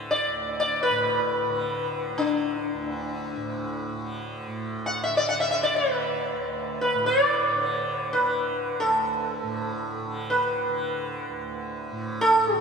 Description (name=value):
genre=indian classical, Hindustani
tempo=free time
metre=none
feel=none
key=unclear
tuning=A4 = 440 Hz
part: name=tanpura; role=drone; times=0.0-12.6 s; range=D2 to D3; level=-33 LUFS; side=right 2 dB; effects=none
part: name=sitar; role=melody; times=0.1-12.6 s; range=D4 to F#5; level=-24 LUFS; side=equal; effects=none
room=wet cathedral reverb, RT60 4.1 s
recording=recorded in a church or concert hall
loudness=-24 LUFS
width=side -5 dB against mid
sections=0.0-4.5 A section; 4.5-12.6 A section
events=none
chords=none